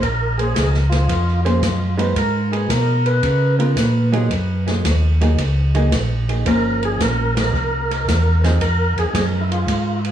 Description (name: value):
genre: soul jazz organ trio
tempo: 112 BPM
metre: 4/4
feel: swing 68% on 8ths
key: Bb minor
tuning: A4 = 439 Hz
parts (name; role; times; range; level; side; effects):
- percussive tonewheel organ; melody; 0.0-10.0 s; E4 to Cb5; -23 LUFS; equal; slow rotary speaker, tape echo
- mellow tonewheel organ; bass; 0.0-10.1 s; G1 to Db3; -18 LUFS; equal; overdrive, slow rotary speaker
- open jazz drum kit; drums; 0.0-10.1 s; hi-hat, kick drum, ride cymbal, snare drum; -24 LUFS; right 1 dB; tape echo
- vintage hollow-body jazz guitar; accompaniment; 1.4-8.6 s; F3 to C5; -24 LUFS; right 1 dB; tape echo
room: light reverb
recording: echo-heavy mix, small room ambience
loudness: -16 LUFS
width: side -10 dB against mid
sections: 0.0-10.1 A section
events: band accent 7.3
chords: 0.0 Bbm7; 2.2 Abm; 3.2 Db13; 4.3 Gb69; 6.5 Gm7b5; 7.5 C7; 8.6 Fm